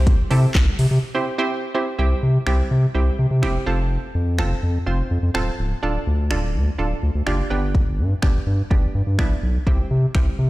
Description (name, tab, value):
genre	dance-pop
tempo	125 BPM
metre	4/4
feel	straight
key	C major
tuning	A4 = 440 Hz
part	hollow square pluck	accompaniment	0.0-10.5 s	B3 to C5	-26 LUFS	right 3 dB	chorus, sidechain pumping
part	saturated sub bass	bass	0.0-10.5 s	Db1 to C3	-19 LUFS	equal	sidechain pumping
part	house drum kit	drums	0.1-10.3 s	finger snaps, handclaps, hi-hat, kick drum, snare drum	-21 LUFS	equal	none
room	little or no reverb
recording	played on a big sound system in a bare room, stone room reverb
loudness	-18 LUFS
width	side -18 dB against mid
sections	0.0-2.0 A section; 2.0-10.5 B section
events	break 1.0-2.0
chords	0.0 C; 3.7 F; 5.8 Dm; 7.5 G; 9.7 C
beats	| 0.07 0.55 1.03 1.51 | 1.99 2.47 2.95 3.43 | 3.91 4.39 4.87 5.35 | 5.83 6.31 6.79 7.27 | 7.75 8.23 8.71 9.19 | 9.67 10.15